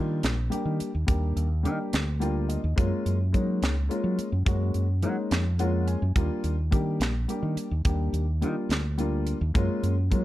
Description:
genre	electric jazz fusion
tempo	71 BPM (dotted quarters)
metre	6/8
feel	straight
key	Eb major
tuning	A4 = 439 Hz
part	dark grand piano	accompaniment	0.0-10.2 s	G3 to Ab5	-30 LUFS	left 2 dB	none
part	fingered electric bass	bass	0.0-10.2 s	Bb1 to Gb3	-26 LUFS	equal	none
part	crisp fusion drum kit	drums	0.2-10.2 s	hi-hat, kick drum, snare drum	-27 LUFS	equal	none
room	little or no reverb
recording	dark, warm production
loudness	-24 LUFS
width	side -15 dB against mid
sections	0.0-10.2 A section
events	grand piano fill 1.9-2.8, 5.3-6.2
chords	0.0 Ebmaj9; 2.8 Gbmaj9; 6.2 Ebmaj9; 9.5 Gbmaj9

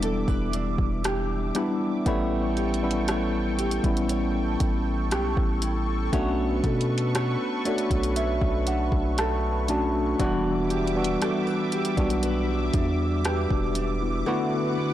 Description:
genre	contemporary R&B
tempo	59 BPM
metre	4/4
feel	straight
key	E dorian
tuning	A4 = 441 Hz
part	mellow tine electric piano	accompaniment	0.0-14.9 s	D3 to A5	-26 LUFS	left 1 dB	fast stereo tremolo
part	lush unison pad	sustained chords	0.0-14.9 s	G3 to D6	-34 LUFS	right 1 dB	chorus, phaser, sidechain pumping
part	nylon-string guitar	arpeggios	0.0-14.9 s	D3 to C#5	-33 LUFS	right 2 dB	tape echo
part	long sustained 808-style bass	bass	0.0-14.2 s	E1 to B2	-28 LUFS	equal	none
part	smooth R&B drum kit	drums	0.0-14.0 s	hi-hat, kick drum, rim click	-29 LUFS	equal	overdrive
room	light reverb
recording	blown-out, overdriven recording, overdrive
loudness	-23 LUFS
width	side -12 dB against mid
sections	0.0-14.9 A section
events	tine electric piano fill 7.1-10.2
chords	0.0 Em7; 2.1 A7; 6.1 Bm9; 10.2 Em7; 14.3 D6

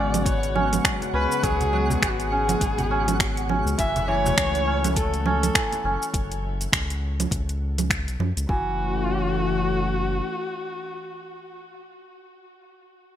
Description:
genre	organic downtempo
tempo	102 BPM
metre	4/4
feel	swing 58% on 16ths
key	F# minor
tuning	A4 = 442 Hz
part	warm kamancheh	melody	0.0-11.6 s	F#4 to E5	-28 LUFS	left 1 dB	ping-pong delay
part	warm analog pad	sustained chords	0.0-11.6 s	C#3 to F#4	-30 LUFS	left 3 dB	chorus, sidechain pumping
part	kora	arpeggios	0.0-10.8 s	E3 to C#4	-28 LUFS	right 2 dB	ping-pong delay
part	round analog bass	bass	0.0-10.2 s	F#1 to F#2	-27 LUFS	equal	none
part	twinkling granular texture	texture	0.0-6.2 s	F#5	-38 LUFS	right 4 dB	built-in reverb, analog chorus
part	deep house drum kit	drums	0.1-8.5 s	congas, finger snaps, hi-hat, shaker	-25 LUFS	right 4 dB	none
part	cajon	percussion	0.1-5.8 s	none	-33 LUFS	right 1 dB	none
part	electronic kick drum	drums	0.3-8.6 s	none	-28 LUFS	equal	none
room	moderate plate reverb, RT60 1.8 s, digital ambience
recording	bright 1980s-style digital production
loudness	-21 LUFS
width	side -10 dB against mid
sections	0.0-8.5 A section; 8.5-10.8 B section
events	none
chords	0.0 C#7sus4; 3.8 F#m7

